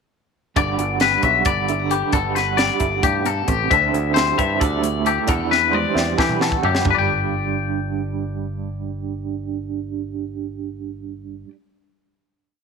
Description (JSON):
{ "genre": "math rock and midwest emo", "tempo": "267 BPM (eighths)", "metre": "7/8", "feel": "straight", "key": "G major", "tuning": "A4 = 440 Hz", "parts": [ { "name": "electric guitar through a small old amp", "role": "accompaniment", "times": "0.6-11.5 s", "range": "G2 to C5", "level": "-24 LUFS", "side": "right 13 dB", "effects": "tremolo" }, { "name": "twangy electric guitar", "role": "arpeggios", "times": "0.6-11.5 s", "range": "G4 to G5", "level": "-20 LUFS", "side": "left 12 dB", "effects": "slapback echo" }, { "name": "picked electric bass", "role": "bass", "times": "0.6-11.4 s", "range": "G1 to E3", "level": "-26 LUFS", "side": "equal", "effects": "none" }, { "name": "crisp fusion drum kit", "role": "drums", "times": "0.6-7.0 s", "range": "hi-hat, kick drum, snare drum, toms", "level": "-23 LUFS", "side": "equal", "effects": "none" } ], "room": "light reverb, small room ambience", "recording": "1960s-style stereo with parts hard left and right", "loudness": "-18 LUFS", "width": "side -5 dB against mid", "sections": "0.6-6.9 A section; 6.9-10.0 final chord", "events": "drum fill 5.5-6.9", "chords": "0.6 Gmaj7; 3.7 D9sus4; 5.3 Em9; 6.9 G" }